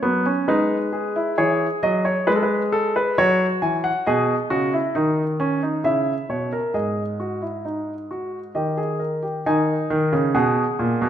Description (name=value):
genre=classical, baroque-style 3-part fugue for grand piano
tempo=67 BPM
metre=3/4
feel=straight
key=G# minor from 4.1 s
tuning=A4 = 440 Hz
part: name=warm grand piano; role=solo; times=0.0-11.1 s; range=G#2 to G#5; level=-19 LUFS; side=equal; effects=none
room=wet recital hall reverb, RT60 1.7 s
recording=none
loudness=-19 LUFS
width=side -10 dB against mid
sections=0.0-9.5 A section; 9.5-11.1 B section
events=none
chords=0.5 G#m; 1.4 C#m7/E; 3.2 F#5; 4.1 B; 5.8 A#dim/C#; 6.7 D#sus4/G#; 8.5 D#; 9.5 G#m